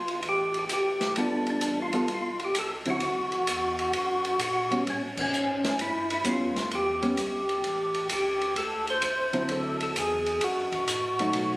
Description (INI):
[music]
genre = soul jazz organ trio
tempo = 130 BPM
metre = 4/4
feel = swing 68% on 8ths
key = D mixolydian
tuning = A4 = 440 Hz
[part]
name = percussive tonewheel organ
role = melody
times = 0.0-11.6 s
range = C#4 to C5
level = -27 LUFS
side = equal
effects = slow rotary speaker, overdrive
[part]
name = tonewheel organ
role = bass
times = 0.0-11.6 s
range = F1 to B2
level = -43 LUFS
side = equal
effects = chorus vibrato, slow rotary speaker
[part]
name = open jazz drum kit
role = drums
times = 0.1-11.5 s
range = crash cymbal, hi-hat, kick drum, ride cymbal, snare drum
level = -32 LUFS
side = equal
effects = none
[part]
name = hollow-body jazz guitar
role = accompaniment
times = 1.2-11.6 s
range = D3 to A4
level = -30 LUFS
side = equal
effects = none
[sound]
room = moderate large studio reverb, RT60 1.5 s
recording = recorded on a phone in the room, club reverb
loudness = -25 LUFS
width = side -20 dB against mid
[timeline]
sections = 0.0-11.6 A section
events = band accent 5.1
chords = 0.0 G9; 3.0 D9; 4.9 A7; 8.6 D9; 10.4 F#m6